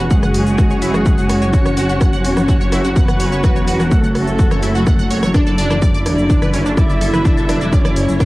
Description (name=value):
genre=melodic techno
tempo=126 BPM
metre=4/4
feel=straight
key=F# minor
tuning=A4 = 440 Hz
part: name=dark chamber string section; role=sustained chords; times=0.0-8.3 s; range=D3 to F#4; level=-21 LUFS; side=equal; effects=sidechain pumping
part: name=wide unison pluck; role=arpeggios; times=0.0-8.3 s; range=C#4 to F#6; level=-24 LUFS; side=right 1 dB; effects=phaser, sidechain pumping, tape echo
part: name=swelling detuned saw bass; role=bass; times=0.0-8.3 s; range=E1 to F#1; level=-20 LUFS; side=equal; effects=tube saturation, sidechain pumping
part: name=wide unison lead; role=melody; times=0.1-8.3 s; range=G#3 to E4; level=-21 LUFS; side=equal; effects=sidechain pumping, analog delay
part: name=rich chamber violin section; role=second line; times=0.1-8.3 s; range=G#4 to E5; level=-28 LUFS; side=equal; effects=sidechain pumping, tape echo
part: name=electronic kick drum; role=drums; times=0.1-8.3 s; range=none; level=-14 LUFS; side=equal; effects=overdrive, small room reverb, cassette tape
part: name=techno drum kit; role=drums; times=0.1-8.3 s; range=hi-hat, rim click, shaker, toms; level=-24 LUFS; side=equal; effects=overdrive, small room reverb, cassette tape
room=moderate studio reverb, RT60 0.5 s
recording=home recording on cassette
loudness=-12 LUFS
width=side -19 dB against mid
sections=0.0-8.3 A section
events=none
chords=0.0 F#m; 5.3 Dadd9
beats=0.10 0.58 1.06 | 1.53 2.01 2.49 2.96 | 3.44 3.92 4.39 4.87 | 5.34 5.82 6.30 6.77 | 7.25 7.72 8.20